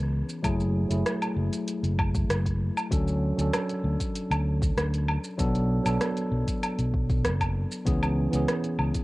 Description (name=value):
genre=sunset chillout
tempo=97 BPM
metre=4/4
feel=straight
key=F# minor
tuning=A4 = 440 Hz
part: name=tine electric piano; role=accompaniment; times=0.0-9.0 s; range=E3 to A4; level=-29 LUFS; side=equal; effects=auto-pan, low-pass filter, cassette tape, analog delay
part: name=fretless electric bass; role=bass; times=0.0-8.9 s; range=F#1 to D2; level=-27 LUFS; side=equal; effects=none
part: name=deep house drum kit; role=drums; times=0.3-9.0 s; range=hi-hat, rim click, shaker, woodblock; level=-32 LUFS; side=equal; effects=overdrive
part: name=electronic kick drum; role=drums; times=0.4-9.0 s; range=none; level=-29 LUFS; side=equal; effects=overdrive
room=light reverb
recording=home recording on cassette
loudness=-24 LUFS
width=side -20 dB against mid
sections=0.0-9.0 A section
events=filter sweep on tine electric piano 0.0-9.0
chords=0.4 F#m9; 2.9 Dmaj7; 5.4 Bm7; 7.9 C#m7